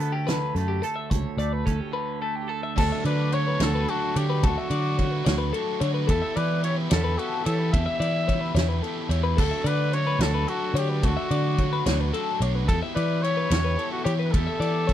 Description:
math rock and midwest emo; 73 BPM (dotted quarters); 6/8; straight; D major; A4 = 440 Hz
twangy electric guitar; accompaniment; 0.0-4.4 s; D2 to A4; -32 LUFS; right 10 dB
twelve-string electric guitar; arpeggios; 0.0-14.9 s; G4 to E5; -30 LUFS; left 8 dB
picked electric bass; bass; 0.0-14.9 s; B1 to E3; -25 LUFS; right 1 dB
loose indie drum kit; drums; 0.0-14.9 s; crash cymbal, hi-hat, kick drum, ride cymbal, snare drum; -28 LUFS; right 1 dB
warm trumpet; melody; 2.8-14.9 s; F#4 to E5; -29 LUFS; equal
cranked stack guitar; riff; 2.8-14.9 s; D3 to G4; -32 LUFS; right 2 dB; overdrive
studio reverb; -22 LUFS; side -11 dB against mid
0.0-2.8 A section; 2.8-14.9 B section
break 1.9-2.8
0.0 Dmaj7; 6.1 Em7; 9.4 Dmaj7; 12.7 Em7

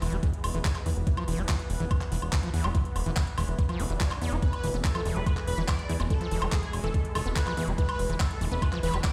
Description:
psychedelic trance; 143 BPM; 4/4; straight; E major; A4 = 438 Hz
bubbling stepped-filter texture; sustained chords; 0.0-9.1 s; E3 to B3; -43 LUFS; equal; chorus, built-in reverb, sidechain pumping
overdriven acid bass; riff; 0.0-9.1 s; E3 to F4; -38 LUFS; equal; distortion, sidechain pumping, dub echo
plucky analog bass; bass; 0.0-9.0 s; E1 to E2; -32 LUFS; equal
garage drum kit; drums; 0.0-9.1 s; handclaps, hi-hat, woodblock; -37 LUFS; equal
vowel-sweep wobble bass; second line; 0.2-7.5 s; G#3 to D4; -49 LUFS; equal
electronic kick drum; drums; 0.2-9.1 s; -29 LUFS; equal
unison lead; melody; 4.4-9.1 s; G#4 to D5; -37 LUFS; equal; phaser, sidechain pumping, dub echo
light reverb; played on a big sound system in a bare room, stone room reverb; -28 LUFS; mono
0.0-9.1 A section
0.0 E5

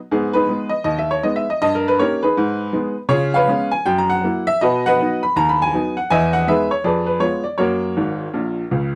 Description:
jazz, stride piano; 160 BPM; 4/4; swing 63% on 8ths; B major; A4 = 440 Hz
clear upright piano; solo; 0.1-9.0 s; G#1 to B5; -19 LUFS; equal
light reverb; -19 LUFS; mono
0.0-9.0 A section
upright piano fill 8.0-9.0
0.1 G#m; 1.6 D#7/G; 2.4 G#m; 3.1 C#7; 3.9 F#7; 4.6 B; 5.4 B/D#; 6.1 Emaj7; 6.9 Fdim; 7.6 F#

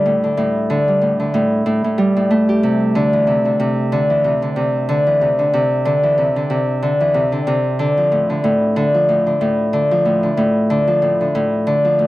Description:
folktronica; 93 BPM; 4/4; swing 56% on 16ths; C major; A4 = 440 Hz
Celtic harp; solo; 0.0-12.1 s; A2 to G4; -14 LUFS; equal
light reverb; dry, close 1970s-style studio recording; -14 LUFS; side -17 dB against mid
0.0-2.6 A section; 2.6-12.1 B section
0.0 Gsus2; 2.6 Cadd9; 7.8 Dm

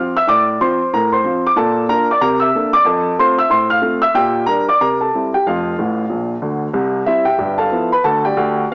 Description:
jazz, stride piano; 185 BPM; 4/4; swing 59% on 8ths; F major; A4 = 442 Hz
warm baby grand piano; solo; 0.0-8.7 s; F1 to F6; -16 LUFS; equal; cassette tape
moderate spring reverb, RT60 1.4 s, small room ambience; home recording on cassette, small speaker sound; -16 LUFS; mono
0.0-6.8 A section; 6.8-8.7 B section
grand piano fill 5.8-6.8
0.3 F/A; 1.6 Bbmaj7; 2.2 C13; 2.9 F; 3.5 F/A; 4.2 Gm/Bb; 4.8 C; 5.5 F; 6.8 C; 7.4 G13; 8.0 G5/D

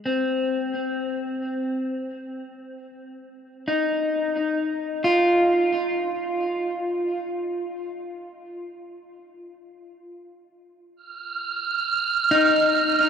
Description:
ambient; free time; A4 = 438 Hz
electric guitar at the edge of break-up; arpeggios; 0.1-13.1 s; C4 to F4; -23 LUFS; left 1 dB; tape echo
wind-like tuned noise texture; texture; 11.1-13.1 s; F6; -21 LUFS; right 5 dB; built-in reverb
wet huge ambient reverb, RT60 7.7 s; dark, warm production; -21 LUFS; side -7 dB against mid
0.0-13.1 A section
fade-in on clean electric guitar 0.0-13.1
0.0 Ab6 (rootless); 11.0 Ebsus2

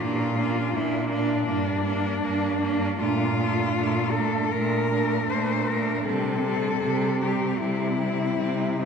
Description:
classical, lyrical piece for cello ensemble; 78 BPM; 4/4; rubato; A4 = 440 Hz
rich cello; melody; 0.0-8.9 s; D4 to C5; -27 LUFS; left 4 dB
rich cello; second line; 0.0-8.9 s; C4 to D4; -29 LUFS; right 6 dB
rich cello; accompaniment; 0.0-8.9 s; G3 to Bb3; -30 LUFS; left 1 dB
warm cello; bass; 0.0-8.9 s; G2 to C3; -28 LUFS; right 1 dB
wet cathedral reverb, RT60 4.5 s; -22 LUFS; side -6 dB against mid
0.0-8.9 A section
0.0 Bb; 1.5 Gm; 3.0 Bbmaj7; 6.1 C

